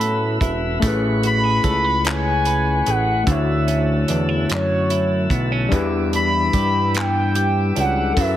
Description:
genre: slow six-eight R&B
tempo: 49 BPM (dotted quarters)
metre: 6/8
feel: straight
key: unclear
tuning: A4 = 440 Hz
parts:
  - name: gliding portamento lead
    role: melody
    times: 0.0-8.4 s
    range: C#5 to B5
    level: -22 LUFS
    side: equal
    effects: chorus, tape echo
  - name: semi-hollow electric guitar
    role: second line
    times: 0.0-8.4 s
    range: D3 to B4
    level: -28 LUFS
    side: right 6 dB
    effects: none
  - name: overdriven tine electric piano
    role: accompaniment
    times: 0.0-8.4 s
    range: D3 to C#5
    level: -23 LUFS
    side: left 4 dB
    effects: none
  - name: tonewheel organ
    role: sustained chords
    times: 0.0-8.4 s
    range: C#4 to E6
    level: -30 LUFS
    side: equal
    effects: slow rotary speaker
  - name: fat analog bass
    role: bass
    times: 0.0-8.4 s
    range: E1 to A2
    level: -22 LUFS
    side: right 1 dB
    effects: none
  - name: warm soul drum kit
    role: drums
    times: 0.0-8.4 s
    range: handclaps, hi-hat, kick drum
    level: -23 LUFS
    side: right 1 dB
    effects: none
room: light reverb, small room ambience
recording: heavily compressed radio sound, multiband compression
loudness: -16 LUFS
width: side -12 dB against mid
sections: 0.0-8.4 A section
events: none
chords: 0.0 F#m11; 0.8 Amaj9; 3.3 Dmaj9; 5.7 Em7

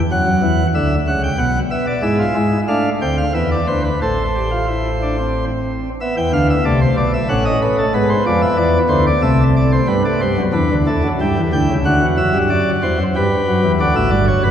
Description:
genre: classical, baroque-style 3-part fugue for pipe organ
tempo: 92 BPM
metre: 3/4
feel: straight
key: A minor, G major from 9.9 s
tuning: A4 = 440 Hz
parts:
  - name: chamber organ, principal chorus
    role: solo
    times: 0.0-14.5 s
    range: F#1 to G5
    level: -14 LUFS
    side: equal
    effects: none
room: wet church reverb, RT60 3.1 s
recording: heard from further back in the room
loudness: -14 LUFS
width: side -9 dB against mid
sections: 0.0-6.0 A section; 6.0-9.9 B section; 9.9-14.5 C section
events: none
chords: 0.1 F#5; 1.4 Bm; 2.1 E/G#; 2.7 Am; 3.4 E5; 4.0 Am; 7.3 B7/A; 8.0 E7; 9.2 Am/C; 9.9 G; 11.2 C#dim; 11.9 D7; 13.2 G; 13.8 D

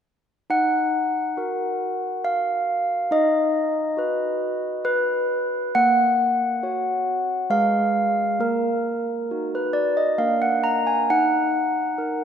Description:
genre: classical, tune for handbells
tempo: 68 BPM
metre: 3/4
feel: straight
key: Eb minor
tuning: A4 = 440 Hz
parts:
  - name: handbells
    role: solo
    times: 0.5-12.2 s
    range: Ab3 to Bb5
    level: -20 LUFS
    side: equal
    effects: none
room: wet church reverb, RT60 3.5 s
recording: minimal, uncompressed stereo recording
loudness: -20 LUFS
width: side -8 dB against mid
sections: 0.5-12.2 A section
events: none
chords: 0.5 Ebm; 3.1 B/D#; 5.8 Gb/Bb; 7.5 Fdim/Ab; 8.4 Ebm/Bb; 10.2 Bb; 11.1 Ebm

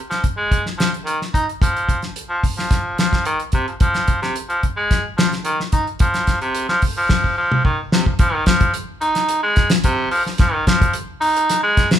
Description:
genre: afrobeat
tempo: 109 BPM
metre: 4/4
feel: straight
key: F minor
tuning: A4 = 439 Hz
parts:
  - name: raspy baritone saxophone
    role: bass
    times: 0.1-11.9 s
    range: C3 to Eb4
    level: -19 LUFS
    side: equal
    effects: none
  - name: damped 70s drum kit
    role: drums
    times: 0.1-12.0 s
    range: hi-hat, kick drum, snare drum, toms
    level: -18 LUFS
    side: equal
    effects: none
room: light reverb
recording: band playing live in one room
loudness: -16 LUFS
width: side -10 dB against mid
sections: 0.0-8.2 A section; 8.2-12.0 B section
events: drum fill 7.1-8.2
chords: none

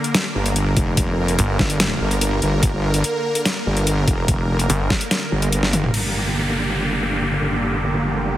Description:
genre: heavy wobble dubstep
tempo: 145 BPM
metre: 4/4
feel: half-time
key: G minor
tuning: A4 = 439 Hz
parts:
  - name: supersaw pad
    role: sustained chords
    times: 0.0-8.4 s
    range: D3 to Bb4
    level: -24 LUFS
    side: right 1 dB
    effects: phaser, sidechain pumping
  - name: dubstep drum kit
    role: drums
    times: 0.0-6.0 s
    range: crash cymbal, hi-hat, snare drum, toms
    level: -21 LUFS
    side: left 1 dB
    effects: overdrive
  - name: wobble bass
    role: bass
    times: 0.4-8.4 s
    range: F1 to G1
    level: -21 LUFS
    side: equal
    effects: chorus, overdrive
  - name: electronic kick drum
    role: drums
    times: 0.8-5.0 s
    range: none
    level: -20 LUFS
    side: equal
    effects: overdrive
  - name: snarling distorted saw bass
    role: bass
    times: 1.4-1.6, 4.7-4.9 s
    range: G1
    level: -18 LUFS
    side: equal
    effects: distortion, overdrive
  - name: downlifter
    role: sound effects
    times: 5.9-8.4 s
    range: none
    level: -24 LUFS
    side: equal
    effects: none
room: moderate lush hall reverb, RT60 2.3 s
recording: heavily compressed radio sound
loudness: -17 LUFS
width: side -13 dB against mid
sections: 0.0-5.9 A section; 5.9-8.4 B section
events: drop 0.0-5.9; drum fill 5.6-5.9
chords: 0.0 Gm

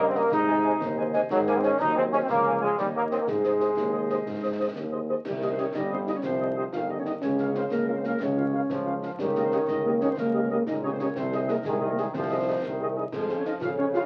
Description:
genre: military-style march for wind band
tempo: 122 BPM (dotted quarters)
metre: 6/8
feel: straight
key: Ab major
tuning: A4 = 440 Hz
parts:
  - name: dark trumpet section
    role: melody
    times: 0.0-14.0 s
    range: Eb5 to Ab5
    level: -39 LUFS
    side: equal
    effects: none
  - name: dark euphonium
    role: second line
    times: 0.0-14.1 s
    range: C3 to F4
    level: -33 LUFS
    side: equal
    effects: none
  - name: warm woodwind section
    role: second line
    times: 0.0-14.1 s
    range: G4 to F5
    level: -39 LUFS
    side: equal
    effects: none
  - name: mellow French horn section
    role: accompaniment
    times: 0.0-14.0 s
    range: Ab3 to Eb5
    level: -34 LUFS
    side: equal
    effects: none
  - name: dark trombone section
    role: sustained chords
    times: 0.0-14.1 s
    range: Bb2 to Eb4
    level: -30 LUFS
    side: equal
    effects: none
  - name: warm tuba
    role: bass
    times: 0.0-14.0 s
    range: G1 to Ab2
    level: -33 LUFS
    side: equal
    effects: none
  - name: concert snare drum, concert bass drum and clash cymbals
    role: drums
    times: 0.2-14.1 s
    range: none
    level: -42 LUFS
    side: equal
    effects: none
room: moderate small room reverb, RT60 0.5 s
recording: very old 78 rpm record, vinyl crackle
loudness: -26 LUFS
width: mono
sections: 0.0-5.3 A section; 5.3-14.1 A section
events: none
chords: 0.3 Ab; 2.3 Db; 2.8 Eb5; 3.3 Ab; 5.3 Cm; 7.2 Bbm/Db; 9.2 Eb7/Db; 11.2 Ab/C; 13.1 Db/F

